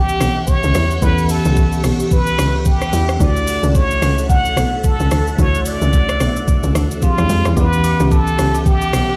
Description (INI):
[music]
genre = amapiano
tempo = 110 BPM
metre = 4/4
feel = swing 58% on 16ths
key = E dorian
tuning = A4 = 436 Hz
[part]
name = trumpet with plunger mute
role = melody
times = 0.0-9.2 s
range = F4 to F#5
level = -23 LUFS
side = equal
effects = digital delay
[part]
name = bell-like tine electric piano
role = accompaniment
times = 0.0-9.2 s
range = E3 to F#5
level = -25 LUFS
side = equal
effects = none
[part]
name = phased string machine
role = sustained chords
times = 0.0-9.2 s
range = Ab3 to C#6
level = -30 LUFS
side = equal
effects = ensemble chorus, phaser, sidechain pumping
[part]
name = tight log drum bass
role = bass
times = 0.0-9.2 s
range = B1 to F2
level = -20 LUFS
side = equal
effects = none
[part]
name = smooth R&B drum kit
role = drums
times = 0.1-9.1 s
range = hi-hat, kick drum, rim click, shaker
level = -20 LUFS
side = equal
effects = none
[part]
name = agogo bells and woodblock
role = percussion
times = 7.6-9.2 s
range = none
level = -34 LUFS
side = equal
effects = none
[sound]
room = digital ambience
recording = played on a big sound system in a bare room, stone room reverb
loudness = -16 LUFS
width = mono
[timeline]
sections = 0.0-9.2 A section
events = none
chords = 0.0 Em69; 3.2 Dmaj9; 7.0 Fm69; 7.6 Em69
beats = 0.48 | 1.02 1.57 2.11 2.66 | 3.20 3.75 4.29 4.84 | 5.39 5.93 6.48 7.02 | 7.57 8.11 8.66